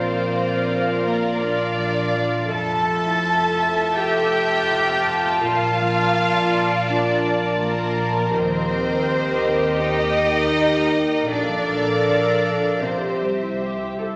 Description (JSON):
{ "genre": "cinematic, emotional film score for orchestra", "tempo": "82 BPM", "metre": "4/4", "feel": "rubato", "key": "unclear", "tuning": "A4 = 438 Hz", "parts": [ { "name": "dark symphonic violin section", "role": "melody", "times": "0.0-13.6 s", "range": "Bb4 to A5", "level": "-27 LUFS", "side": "equal", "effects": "none" }, { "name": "dark studio violin section", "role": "second line", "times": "0.0-14.1 s", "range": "C5 to A5", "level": "-28 LUFS", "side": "equal", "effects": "none" }, { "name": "warm studio viola section", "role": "accompaniment", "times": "0.0-14.2 s", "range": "F4 to Bb4", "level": "-26 LUFS", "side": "equal", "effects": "none" }, { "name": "concert harp", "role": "arpeggios", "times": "0.0-14.2 s", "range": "F2 to C6", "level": "-32 LUFS", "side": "equal", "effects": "none" }, { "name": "dark studio double bass section", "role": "bass", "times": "0.0-14.2 s", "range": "F1 to Eb2", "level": "-33 LUFS", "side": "equal", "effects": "none" }, { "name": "warm symphonic cello section", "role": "bass", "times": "0.0-13.6 s", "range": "Bb3 to A4", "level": "-27 LUFS", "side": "equal", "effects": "none" } ], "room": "wet scoring stage reverb, RT60 1.7 s", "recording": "none", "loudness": "-20 LUFS", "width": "mono", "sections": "0.0-14.2 A section", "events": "none", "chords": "0.0 Bbmaj7; 2.5 Fmaj7; 5.4 Bbmaj7; 8.4 Eb6; 11.3 Bbmaj7; 12.8 C", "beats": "0.33 1.05 1.77 | 2.51 3.24 3.97 4.69 | 5.43 6.16 6.88 7.61 | 8.35 9.09 9.82 10.56 | 11.30 12.05 12.83 13.60" }